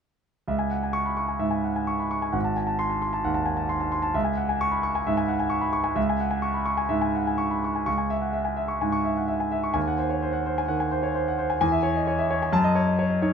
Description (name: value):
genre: classical, virtuoso piano study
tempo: 130 BPM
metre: 4/4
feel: rubato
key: C# minor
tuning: A4 = 440 Hz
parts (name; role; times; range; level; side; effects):
- clear concert grand piano; solo; 0.5-13.3 s; G#1 to C#6; -23 LUFS; equal; none
room: light reverb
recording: none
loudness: -23 LUFS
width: side -7 dB against mid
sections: 0.5-7.9 A section; 7.9-13.3 B section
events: none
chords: 0.5 C#m; 2.3 G#7b9; 4.1 C#m; 9.8 G#7/D#; 11.6 C#m/E; 12.5 D#m7b5/F#